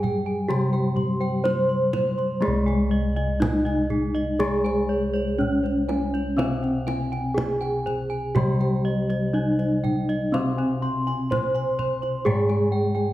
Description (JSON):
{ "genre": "Javanese gamelan", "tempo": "61 BPM", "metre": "4/4", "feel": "straight", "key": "C pelog", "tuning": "A4 = 440 Hz", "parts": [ { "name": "gamelan-type bronze metallophone", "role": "melody", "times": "0.0-13.1 s", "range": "Ab3-20c to C5", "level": "-25 LUFS", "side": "right 1 dB", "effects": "none" }, { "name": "gamelan-type bronze metallophone", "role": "accompaniment", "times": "0.0-13.1 s", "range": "C3 to Ab3-20c", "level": "-28 LUFS", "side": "left 2 dB", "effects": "none" }, { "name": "gamelan-type bossed gongs", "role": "arpeggios", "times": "0.0-13.1 s", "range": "C5 to C6", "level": "-35 LUFS", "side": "left 4 dB", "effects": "none" }, { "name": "gamelan-type bronze metallophone", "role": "arpeggios", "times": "0.0-13.1 s", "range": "Ab4-20c to C6", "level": "-33 LUFS", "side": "right 3 dB", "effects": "none" }, { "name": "gamelan-type bossed gongs", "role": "bass", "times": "0.0-13.1 s", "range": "C2 to Ab4-20c", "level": "-28 LUFS", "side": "equal", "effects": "none" }, { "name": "kendang", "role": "percussion", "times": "0.0-13.1 s", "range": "none", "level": "-32 LUFS", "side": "right 2 dB", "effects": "none" } ], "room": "wet recital hall reverb, RT60 1.5 s", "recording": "none", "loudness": "-21 LUFS", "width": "side -15 dB against mid", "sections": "0.0-2.4 A section; 2.4-13.1 B section", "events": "none", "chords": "none" }